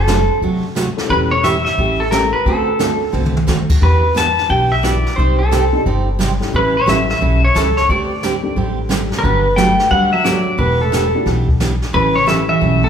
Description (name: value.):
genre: country, western swing.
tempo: 177 BPM.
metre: 4/4.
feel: swing 64% on 8ths.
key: unclear.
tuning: A4 = 436 Hz.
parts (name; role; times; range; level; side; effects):
pedal steel guitar; melody; 0.0-12.9 s; A4 to A5; -16 LUFS; left 1 dB; none.
upright bass; bass; 0.0-12.9 s; E1 to E2; -18 LUFS; equal; none.
picked steel-string acoustic guitar; accompaniment; 0.1-12.8 s; C3 to D5; -20 LUFS; right 3 dB; none.
jazz brush drum kit; drums; 0.1-12.9 s; brushed snare drum, crash cymbal, hi-hat, kick drum, snare drum, toms; -22 LUFS; equal; none.
dark upright piano; accompaniment; 1.0-12.8 s; G3 to A4; -26 LUFS; left 5 dB; none.
archtop guitar, miked and amplified; second line; 9.2-12.9 s; A2 to A3; -21 LUFS; right 2 dB; none.
room: wet large studio reverb, RT60 1.4 s.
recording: band playing live in one room.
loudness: -13 LUFS.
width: side -8 dB against mid.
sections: 0.0-12.9 A section.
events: drum fill 3.1-3.5.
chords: 0.0 D7/F#; 1.1 A7/E; 2.5 D7; 3.8 Em9; 5.2 Cmadd9; 6.5 A7; 7.9 D7sus4; 9.2 Gmaj9; 10.6 Em11; 11.9 A7.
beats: 0.08 0.42 0.76 | 1.10 1.44 1.78 2.12 | 2.46 2.80 3.14 3.48 | 3.82 4.16 4.50 4.84 | 5.17 5.51 5.85 6.19 | 6.53 6.87 7.21 7.55 | 7.89 8.22 8.56 8.90 | 9.24 9.58 9.91 10.25 | 10.59 10.93 11.26 11.60 | 11.94 12.27 12.61.